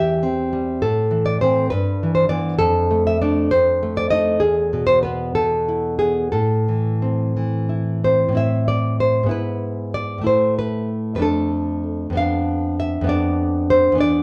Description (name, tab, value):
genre	romantic piece for solo classical guitar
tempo	59-68 BPM (dotted quarters)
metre	6/8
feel	rubato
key	A minor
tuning	A4 = 440 Hz
part	nylon-string guitar	solo	0.0-14.2 s	E2 to F5	-19 LUFS	equal	none
room	moderate large studio reverb, RT60 0.9 s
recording	band playing live in one room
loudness	-20 LUFS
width	mono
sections	0.0-8.3 A section; 8.3-14.2 B section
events	none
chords	0.0 C/E; 0.8 Am; 1.7 Em/G; 2.6 Dm/F; 3.5 F7; 4.4 E5; 6.3 Am; 9.3 E/G#; 10.3 A5; 11.2 Dm/F; 12.2 Bdim/F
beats	| 0.82 1.71 | 2.61 3.52 | 4.43 5.37 | 6.33 7.35 | 8.35 9.31 | 10.26 11.23 | 12.17 13.09 | 13.99